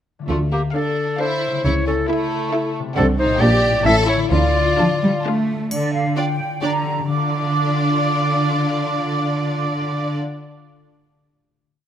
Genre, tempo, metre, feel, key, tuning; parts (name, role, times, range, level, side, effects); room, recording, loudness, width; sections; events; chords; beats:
cinematic, playful, whimsical film cue; 134 BPM; 3/4; straight; D minor; A4 = 440 Hz
concert harp; arpeggios; 0.2-11.0 s; A2 to D5; -26 LUFS; left 7 dB
clear clarinet; second line; 0.3-5.2 s; E4 to E5; -21 LUFS; equal
rich studio violin section; second line; 0.3-10.1 s; A3 to A4; -25 LUFS; left 2 dB
rich studio cello section; bass; 0.3-10.2 s; A2 to A3; -22 LUFS; right 1 dB
rich studio double bass section; bass; 0.3-4.7 s; A1 to D2; -21 LUFS; right 1 dB
rich studio violin section; melody; 0.7-10.2 s; D5 to A5; -29 LUFS; left 2 dB
rich studio viola section; accompaniment; 0.7-10.2 s; C#4 to A4; -26 LUFS; right 2 dB
flute section; second line; 5.7-10.2 s; D5 to D6; -24 LUFS; right 2 dB
triangle; percussion; 5.7-6.6 s; -36 LUFS; left 1 dB
light reverb; close, detailed microphones; -17 LUFS; side -9 dB against mid
0.3-5.7 A section; 5.7-7.1 coda; 7.1-9.8 final chord
0.3 Dm; 1.7 A/C#; 3.0 D7/C; 3.4 Gm/Bb; 3.9 A; 4.3 Dm; 6.4 Gm/D; 7.1 Dm
| 0.30 0.75 1.21 | 1.65 2.09 2.53 | 2.97 3.41 3.86 | 4.32 4.79 5.25 | 5.72 6.17 6.62 | 7.08 7.53 7.98 | 8.42 8.87 9.32